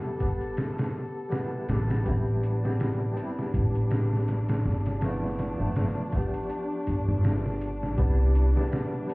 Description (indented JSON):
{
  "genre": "trip hop",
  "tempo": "81 BPM",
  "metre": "4/4",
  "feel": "swing 57% on 16ths",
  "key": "A minor",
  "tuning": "A4 = 440 Hz",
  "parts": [
    { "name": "harpsichord", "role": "accompaniment", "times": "0.0-9.1 s", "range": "F3 to A4", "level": "-32 LUFS", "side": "equal", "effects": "tremolo, tape echo" },
    { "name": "rich symphonic string section", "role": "sustained chords", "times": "0.0-9.1 s", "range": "D4 to A4", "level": "-36 LUFS", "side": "equal", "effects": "none" },
    { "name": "trip hop sampler-style drum kit", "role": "drums", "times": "0.2-9.1 s", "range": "hi-hat, kick drum, snare drum", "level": "-30 LUFS", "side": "equal", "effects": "studio ambience" },
    { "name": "upright bass", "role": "bass", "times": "1.7-8.5 s", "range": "G1 to C2", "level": "-26 LUFS", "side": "equal", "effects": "none" }
  ],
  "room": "small room ambience",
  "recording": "heard muffled through a wall, club reverb, vinyl crackle, EQ",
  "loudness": "-25 LUFS",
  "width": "side -25 dB against mid",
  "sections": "0.0-9.1 A section",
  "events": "none",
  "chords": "0.0 Em7; 2.1 Am9; 5.0 G13; 8.0 Cmaj9"
}